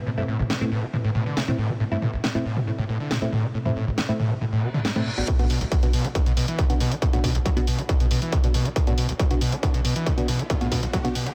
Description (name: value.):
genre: driving peak-time techno.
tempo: 138 BPM.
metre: 4/4.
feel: straight.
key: B phrygian.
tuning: A4 = 440 Hz.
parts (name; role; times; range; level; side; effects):
swarming drone; drone; 0.0-5.3 s; B2; -39 LUFS; equal; none.
screaming distorted acid line; riff; 0.1-11.3 s; A1 to G3; -29 LUFS; equal; distortion, subtle chorus, sidechain pumping, digital delay.
techno drum kit; drums; 0.1-11.3 s; hi-hat, snare drum, toms; -32 LUFS; equal; high-pass filter on snare, high-pass filter on toms, high-pass filter on hats, high-pass filter on room.
wavetable chord stab; stabs; 0.2-11.1 s; A3 to F#4; -33 LUFS; equal; sidechain pumping, digital delay.
reverse cymbal and riser; sound effects; 4.6-11.3 s; none; -41 LUFS; equal; none.
electronic kick drum; drums; 5.3-11.0 s; none; -25 LUFS; equal; distortion.
room: light reverb.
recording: high-pass filter.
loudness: -24 LUFS.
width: mono.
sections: 0.0-5.3 A section; 5.3-11.3 B section.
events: reverse cymbal 4.6-5.3; build-up 5.3-11.3; filter sweep 5.3-11.3.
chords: 0.0 Am; 5.3 Bm.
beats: | 0.07 0.50 0.94 1.37 | 1.80 2.24 2.67 3.11 | 3.54 3.98 4.41 4.85 | 5.28 5.72 6.15 6.59 | 7.02 7.46 7.89 8.33 | 8.76 9.20 9.63 10.07 | 10.50 10.94.